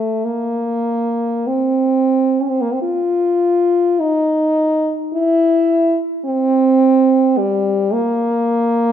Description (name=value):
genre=classical, free, expressive piece for unaccompanied French horn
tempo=43-55 BPM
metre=4/4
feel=rubato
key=unclear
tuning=A4 = 440 Hz
part: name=warm French horn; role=solo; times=0.0-8.9 s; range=G3 to F4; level=-14 LUFS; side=equal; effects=none
room=moderate recital hall reverb, RT60 1.8 s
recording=none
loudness=-14 LUFS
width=side -9 dB against mid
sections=0.3-8.9 A section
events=none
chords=none